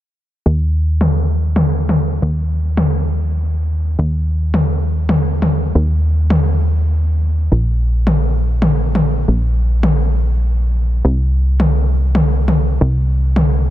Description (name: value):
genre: uplifting trance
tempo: 136 BPM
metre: 4/4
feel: straight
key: unclear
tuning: A4 = 440 Hz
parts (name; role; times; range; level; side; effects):
- plucky analog bass; bass; 0.5-13.7 s; Bb1 to Eb2; -14 LUFS; equal; none
- electronic toms; drums; 1.0-13.5 s; none; -18 LUFS; left 1 dB; low-pass filter on toms, low-pass filter on room
room: little or no reverb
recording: dense, heavily limited modern master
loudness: -13 LUFS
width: side -13 dB against mid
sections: 0.5-13.7 A section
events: filter sweep on drum 0.5-13.7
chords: none